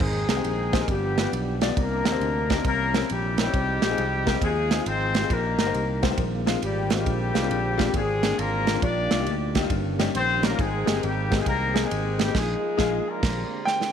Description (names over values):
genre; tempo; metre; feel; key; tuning
uptempo gospel; 136 BPM; 4/4; swing 65% on 8ths; Eb major; A4 = 439 Hz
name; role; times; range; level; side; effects
dark horn section; melody; 0.0-13.9 s; G3 to D5; -27 LUFS; left 3 dB; none
clear upright piano; accompaniment; 0.0-13.0 s; G2 to D5; -30 LUFS; left 13 dB; none
mellow tonewheel organ; sustained chords; 0.0-13.9 s; C3 to G5; -34 LUFS; right 12 dB; slow rotary speaker, overdrive, chorus vibrato
fingered electric bass; bass; 0.0-13.4 s; G1 to Eb2; -28 LUFS; equal; none
modern studio drum kit; drums; 0.0-13.9 s; crash cymbal, kick drum, ride cymbal, snare drum; -27 LUFS; right 4 dB; none
clear concert grand piano; melody; 13.7-13.9 s; G5; -23 LUFS; right 2 dB; none
room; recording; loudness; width
light reverb, small room ambience; 1960s-style stereo with parts hard left and right; -22 LUFS; side -8 dB against mid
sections
0.0-13.9 A section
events
band accent 12.3-13.9; drum fill 13.7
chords
0.0 Abmaj9; 0.9 G7; 1.8 Cm9; 2.6 C7b9; 3.5 Fm9; 5.3 Eb; 6.2 Bb9sus4; 7.1 Bb9; 8.8 Ebmaj9/Bb; 9.7 Eb7/G; 10.6 Abmaj9; 12.3 Bb7sus4; 13.2 Bb13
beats
| 0.00 0.44 0.88 1.32 | 1.77 2.21 2.65 3.09 | 3.53 3.97 4.42 4.86 | 5.30 5.74 6.18 6.62 | 7.06 7.50 7.94 8.38 | 8.82 9.27 9.71 10.15 | 10.59 11.03 11.47 11.91 | 12.35 12.79 13.23 13.67